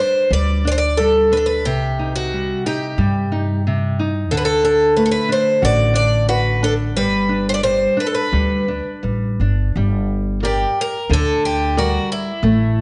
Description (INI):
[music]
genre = fado-style ballad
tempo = 90 BPM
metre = 4/4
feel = rubato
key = G major, G harmonic minor from 9.8 s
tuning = A4 = 442 Hz
[part]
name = picked twelve-string acoustic guitar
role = melody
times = 0.0-12.8 s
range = E4 to D5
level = -20 LUFS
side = equal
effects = none
[part]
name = nylon-string guitar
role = accompaniment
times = 0.0-12.8 s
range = C3 to D5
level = -24 LUFS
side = equal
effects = none
[part]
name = upright bass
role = bass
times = 0.3-12.8 s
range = G1 to G2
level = -22 LUFS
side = equal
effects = none
[sound]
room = moderate recital hall reverb, RT60 1.4 s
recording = nothing above 10.9 kHz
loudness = -18 LUFS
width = mono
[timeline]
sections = 0.0-9.8 A section; 9.8-12.8 B section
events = none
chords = 0.0 G5; 1.7 Cm; 4.3 D; 7.0 G; 9.8 Gm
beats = 0.31 0.98 | 1.66 2.32 2.98 3.65 | 4.31 4.96 5.63 6.30 | 6.97 7.65 8.34 9.05 | 9.76 10.44 11.11 11.78 | 12.44